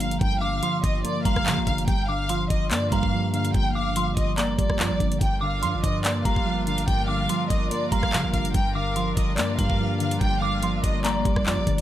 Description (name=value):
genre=hip hop, drill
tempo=144 BPM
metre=4/4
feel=half-time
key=G minor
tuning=A4 = 440 Hz
part: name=warm symphonic violin section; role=melody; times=0.0-11.8 s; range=D5 to G5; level=-28 LUFS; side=left 1 dB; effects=none
part: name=dark detuned synth bell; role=second line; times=0.0-11.4 s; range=Bb5 to D6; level=-33 LUFS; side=equal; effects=chorus, phaser, analog delay
part: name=warbly lo-fi synth keys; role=accompaniment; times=0.0-11.8 s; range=G2 to Bb3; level=-27 LUFS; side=right 1 dB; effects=chorus
part: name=long sustained 808-style bass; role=bass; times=0.0-11.8 s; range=F1 to D3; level=-29 LUFS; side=equal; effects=none
part: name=drill drum kit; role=drums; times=0.0-11.8 s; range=handclaps, hi-hat, kick drum, rim click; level=-25 LUFS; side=equal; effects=none
part: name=rich chamber string section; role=sustained chords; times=5.2-11.8 s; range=G3 to Bb4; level=-36 LUFS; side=left 1 dB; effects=none
room=digital ambience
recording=dry, gritty hardware recording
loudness=-21 LUFS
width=side -12 dB against mid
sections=0.0-11.8 A section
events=none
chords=0.0 Gm7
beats=| 0.21 0.63 1.04 1.46 | 1.88 2.29 2.71 3.13 | 3.54 3.96 4.38 4.79 | 5.21 5.63 6.04 6.46 | 6.88 7.29 7.71 8.13 | 8.54 8.96 9.38 9.79 | 10.21 10.63 11.04 11.46